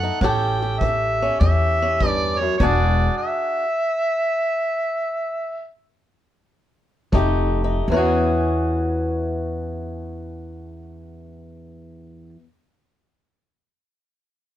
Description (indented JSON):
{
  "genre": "acoustic country blues, solo or duo",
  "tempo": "78-100 BPM",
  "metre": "4/4",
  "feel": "swing 67% on 8ths",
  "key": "E mixolydian",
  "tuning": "A4 = 440 Hz",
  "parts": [
    { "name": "breathy harmonica", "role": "melody", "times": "0.0-5.7 s", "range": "C#5 to G5", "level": "-22 LUFS", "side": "right 1 dB", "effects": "overdrive" },
    { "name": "fingerpicked swing-style acoustic guitar", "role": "accompaniment", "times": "0.0-12.4 s", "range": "E2 to A4", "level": "-24 LUFS", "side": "left 1 dB", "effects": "none" },
    { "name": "upright bass", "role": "bass", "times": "0.0-3.1, 7.1-12.3 s", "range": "E1 to E2", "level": "-22 LUFS", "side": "equal", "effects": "none" },
    { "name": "kick drum", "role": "drums", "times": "0.2-2.8, 7.1-7.4 s", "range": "none", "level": "-25 LUFS", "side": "equal", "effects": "none" }
  ],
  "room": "moderate studio reverb, RT60 0.5 s",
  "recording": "band playing live in one room",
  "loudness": "-18 LUFS",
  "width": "side -12 dB against mid",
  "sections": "0.0-7.9 A section; 7.9-11.0 B section",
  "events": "slowing down 2.6-7.9; stop 2.6-7.1",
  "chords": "0.2 A7; 2.6 E9; 7.1 F9; 7.9 E69"
}